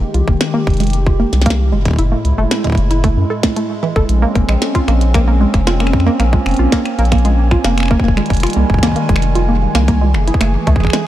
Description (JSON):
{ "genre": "IDM", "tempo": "114 BPM", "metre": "4/4", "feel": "straight", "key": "Bb minor", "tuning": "A4 = 441 Hz", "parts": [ { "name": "hollow soft pad", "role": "sustained chords", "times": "0.0-11.1 s", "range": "A2 to Ab4", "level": "-20 LUFS", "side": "right 1 dB", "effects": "chorus" }, { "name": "round analog bass", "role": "bass", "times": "0.0-10.9 s", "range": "F1 to Gb2", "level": "-14 LUFS", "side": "equal", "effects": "none" }, { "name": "warbly dusty pluck", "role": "arpeggios", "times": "0.1-11.0 s", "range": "Fb3 to A4", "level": "-19 LUFS", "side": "right 2 dB", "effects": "chorus, cassette tape, tape echo" }, { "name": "glitchy drum kit", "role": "drums", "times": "0.1-11.0 s", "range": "finger snaps, hi-hat, snare drum", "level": "-22 LUFS", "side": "equal", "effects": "studio ambience, digital delay" }, { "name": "electronic kick drum", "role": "drums", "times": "0.3-10.9 s", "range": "none", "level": "-15 LUFS", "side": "equal", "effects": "studio ambience" }, { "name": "bubbling stepped-filter texture", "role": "texture", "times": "4.7-11.1 s", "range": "Ab5", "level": "-27 LUFS", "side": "right 7 dB", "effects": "chorus, built-in reverb" } ], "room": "light reverb", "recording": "dark, warm production", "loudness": "-12 LUFS", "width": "side -13 dB against mid", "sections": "0.0-11.1 A section", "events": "none", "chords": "0.0 Fm9; 1.7 Gbm9; 4.1 Bbm9; 8.0 Fm9; 10.1 Gbm9" }